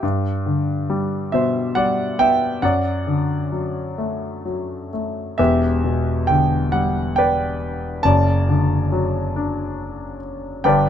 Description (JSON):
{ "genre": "classical, lyrical solo piano", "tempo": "69 BPM", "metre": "3/4", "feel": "rubato", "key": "E minor from 5.4 s", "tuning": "A4 = 437 Hz", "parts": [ { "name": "clear concert grand piano", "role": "solo", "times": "0.0-10.9 s", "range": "E1 to A5", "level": "-18 LUFS", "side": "equal", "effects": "none" } ], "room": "light reverb", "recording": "close, detailed microphones", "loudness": "-18 LUFS", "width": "side -9 dB against mid", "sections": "0.0-5.4 A section; 5.4-10.9 B section", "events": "none", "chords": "0.0 G; 2.6 D/F#; 5.4 Em7; 8.0 D/F#" }